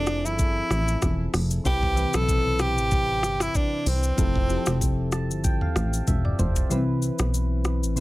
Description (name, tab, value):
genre	afrobeats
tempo	95 BPM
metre	4/4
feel	swing 55% on 16ths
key	C major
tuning	A4 = 440 Hz
part	breathy tenor saxophone	melody	0.0-5.1 s	C4 to A4	-26 LUFS	equal	digital delay
part	soft electric-piano-like synth keys	accompaniment	0.0-8.0 s	C3 to A5	-30 LUFS	left 1 dB	chorus
part	plucky analog bass	bass	0.0-8.0 s	E1 to C2	-25 LUFS	equal	none
part	afro-pop drum kit	drums	0.1-8.0 s	hi-hat, kick drum, rim click, shaker, toms	-26 LUFS	equal	none
room	little or no reverb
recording	none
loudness	-21 LUFS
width	side -18 dB against mid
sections	0.0-6.7 A section; 6.7-8.0 B section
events	synth keys fill 4.8-6.7; drum fill 6.1-6.7; kick muted 6.7-8.0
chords	0.0 Fmaj7; 1.7 Cmaj7; 4.2 Fmaj7; 6.7 Cmaj7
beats	0.39 1.02 | 1.65 2.29 2.92 3.55 | 4.18 4.81 5.44 6.08 | 6.71 7.34 7.97